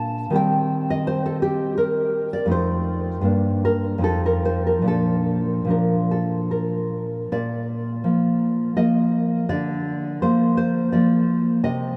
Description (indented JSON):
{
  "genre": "romantic piece for solo classical guitar",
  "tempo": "70-86 BPM",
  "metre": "3/4",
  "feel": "rubato",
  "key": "Bb major",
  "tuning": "A4 = 439 Hz",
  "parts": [
    { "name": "nylon-string guitar", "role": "solo", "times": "0.0-12.0 s", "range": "F2 to A5", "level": "-22 LUFS", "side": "equal", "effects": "none" }
  ],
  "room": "wet huge ambient reverb, RT60 4.8 s",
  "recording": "dreamy mix soaked in reverb",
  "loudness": "-22 LUFS",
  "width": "mono",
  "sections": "0.0-7.3 A section; 7.3-12.0 B section",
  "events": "none",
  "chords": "0.4 Cm/Eb; 2.5 F7; 3.3 Gm; 4.0 F7; 4.9 Bb; 9.5 Bb/D"
}